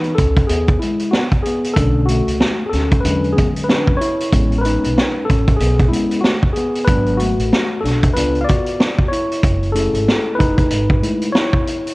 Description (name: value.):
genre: hip hop, jazz-hop.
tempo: 94 BPM.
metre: 4/4.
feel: swing 59% on 16ths.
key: C# minor.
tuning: A4 = 439 Hz.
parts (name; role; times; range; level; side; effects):
mellow tine electric piano; accompaniment; 0.0-11.9 s; D3 to E#5; -18 LUFS; left 1 dB; cassette tape.
vintage drum kit; drums; 0.0-11.9 s; hi-hat, kick drum, snare drum; -17 LUFS; equal; cassette tape.
upright bass; bass; 0.2-11.0 s; F#1 to E2; -20 LUFS; equal; none.
room: light reverb, studio reverb.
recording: home recording on cassette.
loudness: -14 LUFS.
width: side -21 dB against mid.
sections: 0.0-11.9 A section.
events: tine electric piano solo 0.0-11.9.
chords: 0.0 C#m9; 1.8 Bm7; 3.0 E13; 4.3 Amaj9; 6.9 G#m7b5; 8.2 C#7b9; 9.4 F#m9.